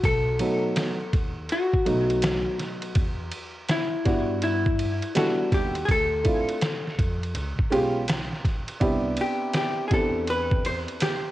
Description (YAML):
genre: hip hop, jazz-hop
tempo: 82 BPM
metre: 4/4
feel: swing 65% on 16ths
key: unclear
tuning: A4 = 440 Hz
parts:
  - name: vintage hollow-body jazz guitar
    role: melody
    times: 0.0-11.3 s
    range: E4 to C5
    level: -26 LUFS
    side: left 2 dB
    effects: cassette tape, tape echo
  - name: upright bass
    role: bass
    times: 0.0-10.8 s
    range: B1 to G2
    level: -32 LUFS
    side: equal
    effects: none
  - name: trip hop sampler-style drum kit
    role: drums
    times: 0.0-11.2 s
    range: hi-hat, kick drum, ride cymbal, snare drum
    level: -27 LUFS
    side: equal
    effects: none
  - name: dark upright piano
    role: accompaniment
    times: 0.4-11.0 s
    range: F#3 to A4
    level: -27 LUFS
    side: right 2 dB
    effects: cassette tape
room: light reverb, digital ambience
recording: home recording on cassette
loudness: -22 LUFS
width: side -15 dB against mid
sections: 0.0-11.3 A section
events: none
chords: 0.0 B7; 3.0 Em9; 5.9 Dm7; 7.4 C#7#11; 8.8 Cmaj9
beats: | 0.03 0.77 1.50 2.23 | 2.96 3.69 4.42 5.16 | 5.89 6.62 7.35 8.08 | 8.81 9.55 10.28 11.01